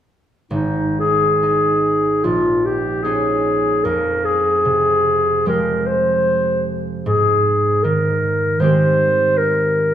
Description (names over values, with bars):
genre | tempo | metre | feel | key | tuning
classical, impressionist duo for clarinet and harp | 75 BPM | 4/4 | rubato | Ab major | A4 = 440 Hz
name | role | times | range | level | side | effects
warm clarinet | melody | 0.5-9.9 s | Eb4 to C5 | -16 LUFS | left 1 dB | none
concert harp | accompaniment | 0.5-9.9 s | Ab1 to G4 | -20 LUFS | right 1 dB | none
room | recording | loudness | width
wet recital hall reverb, RT60 1.7 s | minimal, uncompressed stereo recording | -15 LUFS | side -10 dB against mid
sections
0.5-9.9 A section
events
none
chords
0.5 Ab5; 2.2 Bbm7; 3.9 Fmadd9; 7.0 Abmaj7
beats
| 0.51 1.42 2.24 3.05 | 3.85 4.66 5.46 6.25 | 7.05 7.83 8.61 9.39